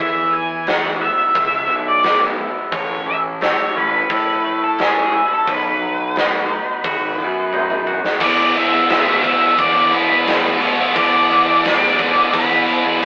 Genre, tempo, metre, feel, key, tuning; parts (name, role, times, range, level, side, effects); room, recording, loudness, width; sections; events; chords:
quiet-loud alternative rock; 88 BPM; 4/4; straight; E mixolydian; A4 = 440 Hz
octave-fuzz lead guitar; melody; 0.0-13.1 s; G#4 to G#5; -17 LUFS; equal; distortion
twangy electric guitar; arpeggios; 0.0-8.2 s; E2 to F#4; -22 LUFS; equal; phaser
fuzz picked electric bass; bass; 0.0-13.1 s; G#1 to E3; -23 LUFS; equal; overdrive
big rock drum kit; drums; 0.7-13.1 s; crash cymbal, hi-hat, kick drum, snare drum, toms; -20 LUFS; equal
scooped high-gain guitar; riff; 8.2-13.1 s; E3 to E4; -19 LUFS; right 1 dB; distortion
thick fuzz guitar; riff; 8.2-13.1 s; E3 to E4; -22 LUFS; equal; distortion
moderate studio reverb, RT60 0.5 s; rough rehearsal-room recording, warm saturation, telephone sound; -14 LUFS; side -27 dB against mid
0.0-8.2 A section; 8.2-13.1 B section
drum fill 7.5-8.2
0.0 E; 2.7 A; 5.5 B; 8.2 E7